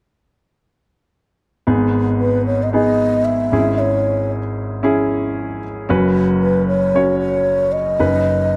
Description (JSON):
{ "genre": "pop", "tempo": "114 BPM", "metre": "4/4", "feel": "swing 56% on 16ths", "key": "G# minor", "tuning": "A4 = 440 Hz", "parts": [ { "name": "clear grand piano", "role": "accompaniment", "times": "1.7-8.6 s", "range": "F#1 to C#5", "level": "-19 LUFS", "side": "equal", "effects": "none" }, { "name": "breathy mellow bass bansuri", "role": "melody", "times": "2.2-8.6 s", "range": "B4 to E5", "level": "-20 LUFS", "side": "equal", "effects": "none" } ], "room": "wet large studio reverb, RT60 0.9 s", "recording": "dark, warm production", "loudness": "-17 LUFS", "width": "mono", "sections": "1.7-8.6 A section", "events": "none", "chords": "1.7 G#m; 3.5 C#m/G#; 5.9 F#sus4; 8.0 Badd9/F#" }